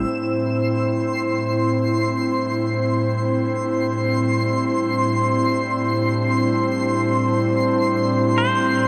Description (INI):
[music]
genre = ambient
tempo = free time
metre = none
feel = none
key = unclear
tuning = A4 = 441 Hz
[part]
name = airy breathy pad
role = sustained chords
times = 0.0-8.9 s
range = A2 to C5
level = -22 LUFS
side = equal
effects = chorus
[part]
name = analog drone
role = drone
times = 0.0-8.9 s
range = G3 to D4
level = -34 LUFS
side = equal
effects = chorus
[part]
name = twinkling granular texture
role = texture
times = 0.0-8.9 s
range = C6 to E6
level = -28 LUFS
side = equal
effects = built-in reverb
[part]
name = pedal steel guitar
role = melody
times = 8.4-8.9 s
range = C5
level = -23 LUFS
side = equal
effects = none
[sound]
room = wet huge ambient reverb, RT60 8.2 s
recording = cassette tape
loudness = -20 LUFS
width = mono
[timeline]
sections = 0.1-8.9 A section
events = fade-in on synth drone 0.1-8.9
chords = 0.1 Am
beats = free time